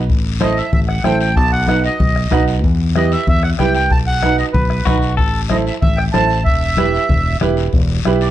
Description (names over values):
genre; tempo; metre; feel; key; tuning
latin, cumbia; 188 BPM; 4/4; straight; E harmonic minor; A4 = 441 Hz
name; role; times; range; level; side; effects
fingered electric bass; bass; 0.0-8.3 s; E1 to E2; -18 LUFS; equal; none
bombo; percussion; 0.1-8.2 s; none; -18 LUFS; left 1 dB; none
congas; percussion; 0.1-8.2 s; none; -24 LUFS; left 3 dB; none
guiro; percussion; 0.1-8.3 s; none; -31 LUFS; left 9 dB; none
accordion; melody; 0.4-8.3 s; B4 to A5; -19 LUFS; right 1 dB; none
clear upright piano; accompaniment; 0.4-8.3 s; D#4 to C5; -20 LUFS; right 7 dB; none
clean electric guitar; second line; 4.9-5.4 s; F#4 to A4; -22 LUFS; left 4 dB; none
room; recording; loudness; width
light reverb; dark, warm production; -13 LUFS; side -12 dB against mid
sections
0.0-7.7 A section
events
none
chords
0.1 Am; 1.4 B; 2.6 Em; 3.9 B; 5.2 Am; 6.5 Em